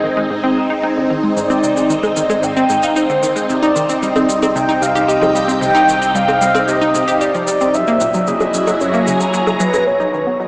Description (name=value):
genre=ambient, sequencer-driven space music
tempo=113 BPM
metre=4/4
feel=straight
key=unclear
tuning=A4 = 441 Hz
part: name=phased string machine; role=sustained chords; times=0.0-10.5 s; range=B2 to Bb5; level=-17 LUFS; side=equal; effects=ensemble chorus, phaser, shimmer reverb
part: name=analog pluck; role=riff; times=0.0-10.4 s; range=Gb2 to G4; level=-18 LUFS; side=equal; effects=chorus, shimmer reverb, tape echo
part: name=round analog bass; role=bass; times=0.0-10.5 s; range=Gb1 to C2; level=-33 LUFS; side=equal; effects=none
part: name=mellow horn-like synth lead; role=melody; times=1.4-10.5 s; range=Cb5 to G5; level=-16 LUFS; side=equal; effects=chorus, shimmer reverb, tape echo
part: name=cabasa and bongos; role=percussion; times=1.4-9.8 s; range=none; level=-24 LUFS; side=equal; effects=tape echo
room=wet cathedral reverb, RT60 5.0 s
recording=in a vast, echoing space, small speaker sound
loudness=-12 LUFS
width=side -31 dB against mid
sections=0.0-9.9 A section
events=none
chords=0.0 Ab; 3.5 Cm; 7.7 Gb7; 9.9 B